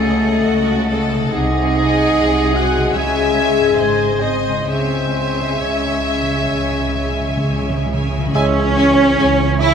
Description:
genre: classical, slow romantic movement for symphony orchestra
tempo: 64-75 BPM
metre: 4/4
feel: rubato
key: C# minor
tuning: A4 = 440 Hz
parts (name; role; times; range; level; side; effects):
- rich studio violin section; melody; 0.0-9.7 s; F#4 to G#5; -24 LUFS; left 4 dB; none
- flute section; second line; 0.0-9.7 s; C#5 to F#5; -26 LUFS; right 2 dB; none
- rich studio violin section; second line; 0.0-9.7 s; D#5 to G#5; -29 LUFS; left 1 dB; none
- warm clarinet; second line; 0.0-7.9 s; A4 to G#5; -28 LUFS; equal; none
- warm oboe; second line; 0.0-8.7 s; A4 to G#5; -26 LUFS; right 3 dB; none
- mellow bassoon; accompaniment; 0.0-8.7 s; F#3 to G#3; -28 LUFS; right 2 dB; none
- rich studio viola section; accompaniment; 0.0-9.7 s; G#4 to D#5; -29 LUFS; right 1 dB; none
- mellow French horn section; sustained chords; 0.0-9.7 s; G#3 to G#4; -20 LUFS; left 3 dB; none
- concert harp; arpeggios; 0.0-9.7 s; G#2 to A4; -28 LUFS; left 9 dB; none
- rich studio cello section; bass; 0.0-9.7 s; G#2 to E4; -21 LUFS; right 2 dB; none
- warm studio double bass section; bass; 0.0-9.7 s; G#1 to C#2; -23 LUFS; right 4 dB; none
- timpani; percussion; 2.9-9.6 s; C#3; -25 LUFS; equal; none
- warm trombone section; sustained chords; 8.3-9.7 s; C#3 to E3; -25 LUFS; right 2 dB; none
- mellow trumpet; stabs; 8.3-9.7 s; C#5 to E5; -23 LUFS; equal; none
room: moderate scoring stage reverb, RT60 1.9 s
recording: none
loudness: -14 LUFS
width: side -7 dB against mid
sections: 0.0-8.3 A section; 8.3-9.7 A section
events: timpani fill 4.7-8.3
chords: 0.0 D#m7b5/C#; 1.3 G#7/B#; 3.0 C#m; 3.8 G#; 4.7 C#m

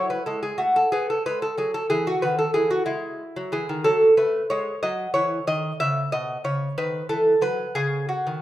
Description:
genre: classical, baroque-style dance for lute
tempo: 61 BPM (dotted quarters)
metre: 6/8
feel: rubato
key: E major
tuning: A4 = 441 Hz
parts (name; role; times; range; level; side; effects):
- lute; solo; 0.0-8.4 s; B2 to E5; -21 LUFS; equal; none
room: moderate recital hall reverb, RT60 1.4 s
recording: minimal, uncompressed stereo recording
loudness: -21 LUFS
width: side -14 dB against mid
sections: 0.0-8.4 A section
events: none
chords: 0.0 F#m7; 0.9 B5; 1.9 E; 3.9 F#m; 5.8 Badd9; 6.8 Badd11/D#; 7.8 C#5

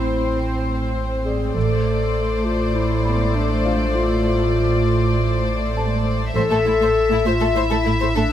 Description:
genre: cinematic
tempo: 100 BPM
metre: 4/4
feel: straight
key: unclear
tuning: A4 = 441 Hz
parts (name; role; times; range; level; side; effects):
- warm symphonic violin section; melody; 0.0-8.3 s; C5 to E5; -26 LUFS; left 5 dB; none
- dark clarinet; second line; 0.0-8.3 s; D4 to A4; -22 LUFS; left 3 dB; none
- warm symphonic violin section; second line; 0.0-8.2 s; E4 to C5; -27 LUFS; left 3 dB; none
- dark studio viola section; accompaniment; 0.0-8.2 s; A3 to C4; -26 LUFS; equal; none
- warm symphonic cello section; bass; 0.0-8.2 s; A2; -24 LUFS; right 4 dB; none
- pure sine sub bass; drone; 0.0-8.3 s; A1; -25 LUFS; equal; none
- felt-muted upright piano; texture; 0.0-8.3 s; B3 to C6; -34 LUFS; left 3 dB; none
- rich symphonic double bass section; bass; 1.6-2.1, 6.4-6.5 s; A1; -27 LUFS; right 5 dB; none
room: light reverb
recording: close, detailed microphones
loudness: -17 LUFS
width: side -10 dB against mid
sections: 0.0-8.3 A section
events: none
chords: 0.0 Am; 1.6 Dm7/A

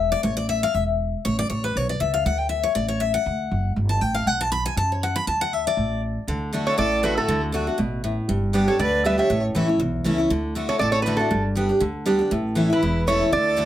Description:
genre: bluegrass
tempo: 238 BPM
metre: 4/4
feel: swing 54% on 8ths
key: D major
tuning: A4 = 439 Hz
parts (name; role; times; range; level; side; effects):
- picked steel-string acoustic guitar; accompaniment; 0.0-13.7 s; E2 to B5; -22 LUFS; left 2 dB; none
- upright bass; bass; 0.0-13.7 s; E1 to F#2; -26 LUFS; right 1 dB; none
- lap resonator guitar; melody; 6.7-13.7 s; A4 to E5; -23 LUFS; right 2 dB; none
- clear fiddle; second line; 6.7-13.7 s; D4 to C#5; -30 LUFS; left 1 dB; none
room: moderate studio ambience, RT60 0.5 s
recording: none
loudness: -20 LUFS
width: side -12 dB against mid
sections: 0.0-6.3 A section; 6.3-13.7 B section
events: steel-string acoustic guitar solo 0.0-6.3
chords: 0.0 A; 2.3 D; 4.3 B5; 5.3 D5; 6.3 D; 8.3 G; 9.3 A; 10.3 D; 11.3 G; 12.3 A

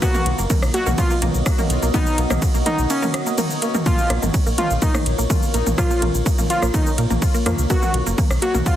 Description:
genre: melodic techno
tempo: 125 BPM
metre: 4/4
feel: straight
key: unclear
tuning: A4 = 440 Hz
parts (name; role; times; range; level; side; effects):
- fat analog lead; melody; 0.0-8.8 s; Db4 to F#4; -24 LUFS; equal; sidechain pumping, ping-pong delay
- deep dark ambient pad; sustained chords; 0.0-8.8 s; Bb3 to D#5; -28 LUFS; equal; chorus, built-in reverb, sidechain pumping
- wide unison pluck; arpeggios; 0.0-8.6 s; Bb3 to Bb4; -27 LUFS; right 1 dB; sidechain pumping, digital delay
- filtered dub chord stab; stabs; 0.0-8.8 s; Bb2 to B3; -29 LUFS; left 2 dB; chorus, sidechain pumping, digital delay
- electronic kick drum; drums; 0.0-8.8 s; none; -20 LUFS; equal; overdrive
- house drum kit; drums; 0.0-8.8 s; hi-hat, ride cymbal, rim click, shaker, toms; -24 LUFS; equal; overdrive
- round analog bass; bass; 0.3-8.6 s; F#1 to Bb2; -22 LUFS; equal; sidechain pumping
room: light reverb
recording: heavily compressed radio sound, multiband compression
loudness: -17 LUFS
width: side -12 dB against mid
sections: 0.0-8.8 A section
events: kick drops out 2.9-3.9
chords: 0.0 B; 3.9 Bbm; 7.7 B

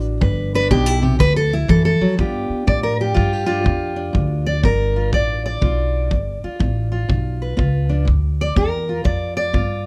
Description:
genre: acoustic country blues, solo or duo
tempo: 122 BPM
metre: 4/4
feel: swing 65% on 8ths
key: G mixolydian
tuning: A4 = 441 Hz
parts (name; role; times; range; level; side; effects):
- fingerpicked steel-string acoustic guitar; melody; 0.0-9.9 s; G2 to D5; -22 LUFS; equal; none
- upright bass; bass; 0.0-9.9 s; G1 to A2; -23 LUFS; equal; none
- kick drum; drums; 0.2-9.7 s; none; -24 LUFS; equal; none
room: little or no reverb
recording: close, detailed microphones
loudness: -19 LUFS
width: mono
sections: 0.0-2.2 A section; 2.2-9.9 B section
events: steel-string acoustic guitar solo 0.0-2.2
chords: 0.2 G; 1.2 D; 2.2 G7

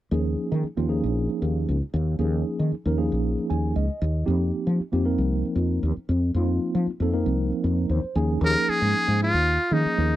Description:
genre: jazz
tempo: 116 BPM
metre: 4/4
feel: swing 53% on 16ths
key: unclear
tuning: A4 = 440 Hz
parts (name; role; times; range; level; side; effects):
- mellow tine electric piano; accompaniment; 0.1-10.2 s; F3 to Ab5; -26 LUFS; right 1 dB; medium stereo tremolo
- woody fretless electric bass; bass; 0.1-10.2 s; Bb1 to F3; -23 LUFS; equal; lush chorus
- trumpet with metal mute; melody; 8.4-10.2 s; Eb4 to Bb4; -22 LUFS; equal; none
room: small room ambience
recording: dry, close 1970s-style studio recording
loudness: -22 LUFS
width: side -14 dB against mid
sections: 0.1-8.4 A section; 8.4-10.2 B section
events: tine electric piano fill 3.2-4.3, 7.7-8.4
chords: 0.1 Eb9sus4; 4.3 F9sus4; 8.2 Eb9sus4

